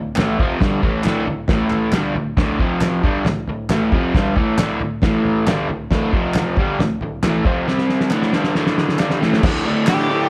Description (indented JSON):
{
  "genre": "garage rock duo or trio",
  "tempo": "136 BPM",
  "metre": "4/4",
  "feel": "straight",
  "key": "D minor",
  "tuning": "A4 = 440 Hz",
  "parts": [
    { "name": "crunchy overdriven guitar", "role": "riff", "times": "0.0-10.3 s", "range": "D2 to C4", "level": "-21 LUFS", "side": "equal", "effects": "none" },
    { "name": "cloth-damped thuddy drum kit", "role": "drums", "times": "0.2-10.0 s", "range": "crash cymbal, hi-hat, kick drum, snare drum, toms", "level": "-22 LUFS", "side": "equal", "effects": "none" },
    { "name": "group handclap", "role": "percussion", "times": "0.2-10.0 s", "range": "none", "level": "-32 LUFS", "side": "equal", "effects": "none" },
    { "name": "octave-fuzz lead guitar", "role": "melody", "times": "9.9-10.3 s", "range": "G4", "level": "-22 LUFS", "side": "equal", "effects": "distortion" }
  ],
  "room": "moderate large studio reverb, RT60 0.9 s",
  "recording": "band playing live in one room",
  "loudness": "-18 LUFS",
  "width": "mono",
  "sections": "0.0-9.4 A section",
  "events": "drum fill 7.7-9.4",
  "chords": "0.0 Dm; 1.5 A5; 1.9 D5; 2.6 F5; 3.0 Dm; 5.0 A5; 5.5 D5; 6.1 F5; 6.6 Dm; 7.7 C5; 8.1 D5"
}